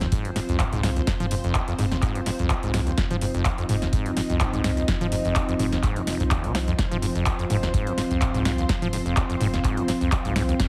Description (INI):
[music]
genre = acid house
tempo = 126 BPM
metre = 4/4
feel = swing 54% on 16ths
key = F minor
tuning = A4 = 440 Hz
[part]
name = string machine, full ensemble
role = sustained chords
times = 0.0-10.7 s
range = F3 to C5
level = -34 LUFS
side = equal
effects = ensemble chorus, sidechain pumping
[part]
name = acid bass, saw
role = riff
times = 0.0-10.7 s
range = F1 to F3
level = -30 LUFS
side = equal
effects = tube saturation, vintage 12-bit sampler grit
[part]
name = saturated sub bass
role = bass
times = 0.0-10.7 s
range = F1 to C2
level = -33 LUFS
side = equal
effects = sidechain pumping
[part]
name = electro analog drum machine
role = drums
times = 0.0-10.7 s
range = finger snaps, handclaps, hi-hat, snare drum, toms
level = -30 LUFS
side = equal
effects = none
[part]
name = warbly tape-like pad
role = texture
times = 0.0-10.7 s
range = C4 to F5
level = -33 LUFS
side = equal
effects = chorus, built-in reverb, sidechain pumping
[part]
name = electronic kick drum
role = drums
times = 0.1-10.7 s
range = none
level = -28 LUFS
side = equal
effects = none
[sound]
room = light reverb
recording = heavily compressed radio sound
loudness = -24 LUFS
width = mono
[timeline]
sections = 0.0-10.7 A section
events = none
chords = 0.0 F5